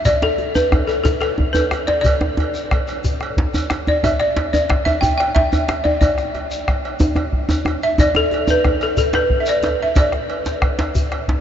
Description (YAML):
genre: west african traditional, West African drum ensemble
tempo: 121 BPM (dotted quarters)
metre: 12/8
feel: straight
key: unclear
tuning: A4 = 439 Hz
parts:
  - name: balafon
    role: melody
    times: 0.0-10.9 s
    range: A4 to G5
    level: -19 LUFS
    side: equal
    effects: none
  - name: bombo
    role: percussion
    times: 0.1-11.4 s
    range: none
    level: -23 LUFS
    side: equal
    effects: none
  - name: cowbell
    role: percussion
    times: 0.1-11.3 s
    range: none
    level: -31 LUFS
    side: right 5 dB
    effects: none
  - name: djembe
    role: percussion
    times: 0.1-11.3 s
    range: none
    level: -25 LUFS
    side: left 1 dB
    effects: none
  - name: shekere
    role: percussion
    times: 0.1-11.1 s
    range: none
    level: -28 LUFS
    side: left 1 dB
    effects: none
  - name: djembe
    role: percussion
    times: 0.2-11.4 s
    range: none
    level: -22 LUFS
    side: right 1 dB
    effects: none
room: wet huge ambient reverb, RT60 8.2 s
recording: in a vast, echoing space, nothing above 7.7 kHz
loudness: -16 LUFS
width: side -9 dB against mid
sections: 0.1-11.4 A section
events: none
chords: none